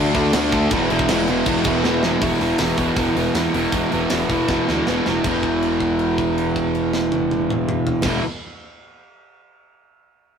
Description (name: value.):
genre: punk rock.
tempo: 159 BPM.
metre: 4/4.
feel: straight.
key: E mixolydian.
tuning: A4 = 441 Hz.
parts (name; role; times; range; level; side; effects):
crunchy overdriven guitar; riff; 0.0-8.2 s; E2 to D4; -22 LUFS; left 6 dB; none.
distorted electric guitar; riff; 0.0-8.2 s; E2 to D4; -21 LUFS; right 6 dB; overdrive.
fuzz guitar; riff; 0.0-2.2 s; D3 to A4; -25 LUFS; right 1 dB; distortion.
growling picked electric bass; bass; 0.0-8.2 s; E1 to E2; -28 LUFS; equal; overdrive.
tight metal drum kit; drums; 0.1-8.1 s; crash cymbal, hi-hat, kick drum, snare drum, toms; -26 LUFS; right 1 dB; none.
room: moderate stone room reverb, RT60 1.3 s.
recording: rough rehearsal-room recording, warm saturation.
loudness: -17 LUFS.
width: side -7 dB against mid.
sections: 0.0-2.2 A section; 2.2-5.2 B section; 5.2-8.3 C section.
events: drum fill 1.8-2.2, 4.5-5.2; held note 5.2-8.0.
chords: 0.0 D; 0.7 E; 2.2 E5.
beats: 0.34 | 0.72 1.10 1.47 1.85 | 2.23 2.60 2.98 3.36 | 3.73 4.11 4.49 4.87 | 5.25 5.62 6.00 6.38 | 6.76 7.14 7.52 7.90.